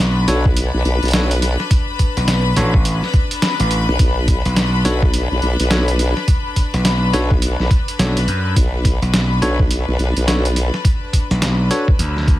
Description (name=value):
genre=glitch hop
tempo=105 BPM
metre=4/4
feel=swing 61% on 16ths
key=B minor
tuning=A4 = 440 Hz
part: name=gritty slap bass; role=bass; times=0.0-12.4 s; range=A1 to F#2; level=-17 LUFS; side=equal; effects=overdrive
part: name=rich studio string section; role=texture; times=0.0-12.4 s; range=D4 to B5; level=-24 LUFS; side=left 4 dB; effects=sidechain pumping
part: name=bell-like tine electric piano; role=stabs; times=0.3-11.9 s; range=D4 to C#5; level=-24 LUFS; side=equal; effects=vintage 12-bit sampler grit, sidechain pumping, tape echo
part: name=formant-sweep wobble bass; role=bass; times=0.3-10.7 s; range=B1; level=-17 LUFS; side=equal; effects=chorus
part: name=boom bap sampler-style drum kit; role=drums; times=0.3-12.4 s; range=hi-hat, snare drum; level=-21 LUFS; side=equal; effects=studio reverb
part: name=electronic kick drum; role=drums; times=0.5-12.4 s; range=none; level=-15 LUFS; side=equal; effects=studio reverb
room=little or no reverb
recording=none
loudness=-14 LUFS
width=side -15 dB against mid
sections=0.0-12.4 A section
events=none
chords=0.0 Bm7